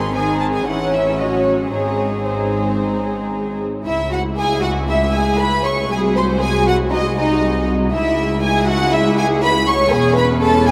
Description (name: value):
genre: quick classical-period movement for string orchestra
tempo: 118 BPM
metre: 4/4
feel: rubato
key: C# minor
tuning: A4 = 436 Hz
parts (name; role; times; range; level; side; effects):
- warm symphonic violin section; melody; 0.0-10.7 s; B#4 to C#6; -23 LUFS; equal; none
- warm symphonic violin section; second line; 0.0-10.7 s; C#4 to C#5; -22 LUFS; equal; none
- rich studio viola section; accompaniment; 0.0-10.7 s; D#3 to F#4; -24 LUFS; equal; none
- rich symphonic cello section; bass; 0.0-10.7 s; B#1 to G#4; -26 LUFS; equal; none
- warm symphonic double bass section; bass; 0.0-10.7 s; E1 to C#2; -26 LUFS; equal; none
room: wet huge ambient reverb, RT60 9.2 s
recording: in a vast, echoing space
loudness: -17 LUFS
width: mono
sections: 0.0-3.8 A section; 3.8-10.7 B section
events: none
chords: 0.0 G#; 0.7 A; 1.7 G#; 3.8 C#m; 5.9 G#7/B#; 7.9 C#m; 9.9 C#m/E